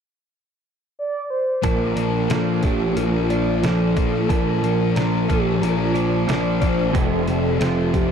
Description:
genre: rock, shoegaze and dream pop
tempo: 90 BPM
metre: 4/4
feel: straight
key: unclear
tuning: A4 = 435 Hz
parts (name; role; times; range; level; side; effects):
- mellow horn-like synth lead; melody; 1.0-8.1 s; F4 to D5; -25 LUFS; equal; chorus, ping-pong delay
- direct-recorded clean electric guitar; arpeggios; 1.6-8.1 s; Bb3 to A5; -31 LUFS; left 8 dB; wide subtle chorus, ping-pong delay
- direct-recorded clean electric guitar; riff; 1.6-8.1 s; F2 to D4; -24 LUFS; right 10 dB; reverse reverb
- thick fuzz guitar; riff; 1.6-8.1 s; F2 to Bb3; -25 LUFS; left 10 dB; distortion, lush chorus
- fuzz picked electric bass; bass; 1.6-8.1 s; F1 to Bb1; -23 LUFS; equal; overdrive
- detuned 8-bit digital drum machine; drums; 1.6-8.1 s; hi-hat, kick drum, snare drum; -24 LUFS; equal; none
room: moderate plate reverb, RT60 2.7 s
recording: dreamy mix soaked in reverb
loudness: -18 LUFS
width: side -7 dB against mid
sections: 0.0-1.6 A section; 1.6-8.1 B section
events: none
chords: 0.0 N.C.; 1.6 Bbmaj7; 6.9 F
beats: 0.31 0.97 | 1.64 2.30 2.97 3.63 | 4.29 4.96 5.62 6.28 | 6.95 7.61

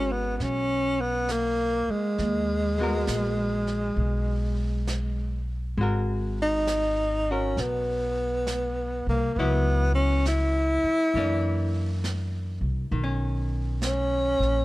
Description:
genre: jazz ballad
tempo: 67 BPM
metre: 4/4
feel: swing 66% on 8ths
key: G# minor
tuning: A4 = 435 Hz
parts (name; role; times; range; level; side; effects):
- breathy tenor saxophone; melody; 0.0-14.6 s; G#3 to E4; -26 LUFS; equal; none
- archtop guitar, miked and amplified; accompaniment; 0.0-14.6 s; D#3 to A#4; -33 LUFS; left 2 dB; none
- upright bass; bass; 0.0-14.6 s; G#1 to F#2; -27 LUFS; equal; none
- jazz brush drum kit; drums; 0.4-14.6 s; brushed snare drum, hi-hat, snare drum; -39 LUFS; right 2 dB; none
room: light reverb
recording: dark, warm production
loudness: -24 LUFS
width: side -18 dB against mid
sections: 0.0-5.8 A section; 5.8-14.6 A section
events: none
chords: 0.0 G#m9; 9.4 C#m7; 11.2 F#aug7; 12.9 Bmaj9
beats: 0.40 1.29 | 2.18 3.07 3.97 4.88 | 5.78 6.68 7.58 8.48 | 9.38 10.27 11.16 12.05 | 12.94 13.83

